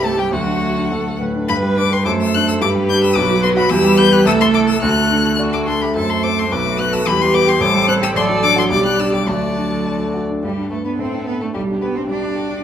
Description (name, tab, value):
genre	quick classical-period movement for piano quintet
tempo	108 BPM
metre	2/4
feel	rubato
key	G major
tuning	A4 = 440 Hz
part	clear violin	melody	0.0-12.6 s	G4 to G6	-20 LUFS	left 7 dB	none
part	rich cello	second line	0.0-12.6 s	F#3 to D4	-21 LUFS	right 5 dB	none
part	warm violin	second line	0.0-12.6 s	G3 to D5	-24 LUFS	left 3 dB	none
part	clear grand piano	accompaniment	0.0-12.6 s	A1 to D5	-20 LUFS	left 1 dB	none
part	rich viola	accompaniment	0.0-12.6 s	F#4 to B4	-22 LUFS	right 2 dB	none
room	moderate recital hall reverb, RT60 1.8 s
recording	none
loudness	-14 LUFS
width	side -9 dB against mid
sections	0.0-1.5 A section; 1.5-10.4 B section; 10.4-12.6 C section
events	none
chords	0.3 D; 1.5 G; 2.1 D7/F#; 2.6 G; 3.2 Bm; 3.7 Em; 4.3 Am/C; 4.8 D; 6.0 F#dim; 6.5 Bm7; 7.1 Em; 7.6 Am7; 8.2 D7/A; 8.7 G/B; 9.3 D; 10.4 G; 11.0 D5/A; 11.6 G/B